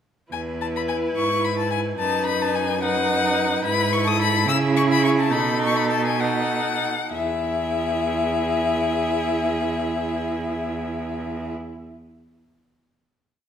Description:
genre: quick classical-period movement for string quartet.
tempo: 64-73 BPM (dotted quarters).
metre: 6/8.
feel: straight.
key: E major.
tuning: A4 = 440 Hz.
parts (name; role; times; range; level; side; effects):
clear violin; melody; 0.3-11.5 s; E5 to E6; -24 LUFS; left 6 dB; none.
rich violin; second line; 0.3-11.5 s; G#4 to B4; -27 LUFS; left 2 dB; none.
rich viola; accompaniment; 0.3-11.5 s; D#4 to E4; -27 LUFS; right 3 dB; none.
clear cello; bass; 0.3-11.5 s; E2 to C#3; -26 LUFS; right 4 dB; none.
room: wet recital hall reverb, RT60 1.5 s.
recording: none.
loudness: -20 LUFS.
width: side -8 dB against mid.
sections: 0.3-7.1 A section; 7.1-10.8 final chord.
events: slowing down 2.8-7.1.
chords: 0.3 E; 2.0 B/F#; 3.6 E/G#; 4.5 C#m; 5.3 B7; 7.1 E.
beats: | 0.33 1.16 | 1.99 2.82 | 3.64 4.47 | 5.32 6.20 | 7.12 8.03 | 8.94 9.85.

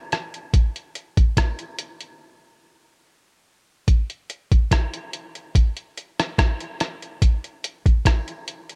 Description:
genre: reggae.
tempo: 72 BPM.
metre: 4/4.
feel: straight.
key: none.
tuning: none.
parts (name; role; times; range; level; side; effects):
lo-fi sampler-style drum kit; drums; 0.1-8.8 s; hi-hat, kick drum, rim click; -22 LUFS; equal; none.
room: digital ambience.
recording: none.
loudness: -22 LUFS.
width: mono.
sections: 0.0-8.8 A section.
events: break 2.2-3.9.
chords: none.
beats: | 0.53 1.37 2.20 3.04 | 3.87 4.71 5.55 6.38 | 7.22 8.05.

